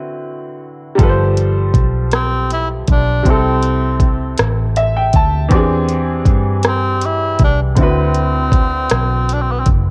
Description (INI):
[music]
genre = slow six-eight R&B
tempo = 53 BPM (dotted quarters)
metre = 6/8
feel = straight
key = C major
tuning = A4 = 437 Hz
[part]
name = clear grand piano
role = accompaniment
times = 0.0-9.9 s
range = C3 to A5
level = -21 LUFS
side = equal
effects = cassette tape
[part]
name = vintage muted fingered electric bass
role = bass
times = 1.0-9.9 s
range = F#1 to G2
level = -20 LUFS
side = equal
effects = none
[part]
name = smooth R&B drum kit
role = drums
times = 1.0-9.8 s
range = hi-hat, kick drum, rim click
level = -17 LUFS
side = equal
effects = cassette tape
[part]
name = breathy tenor saxophone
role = melody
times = 2.1-9.7 s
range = B3 to E4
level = -22 LUFS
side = equal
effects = cassette tape
[sound]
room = light reverb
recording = home recording on cassette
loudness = -15 LUFS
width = mono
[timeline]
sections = 0.0-9.9 A section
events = grand piano fill 4.4-5.5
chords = 0.0 D13; 1.0 G9sus4; 3.2 C6; 5.5 E7alt; 7.8 D13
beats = | 0.98 2.12 | 3.25 4.38 | 5.51 6.64 | 7.78 8.91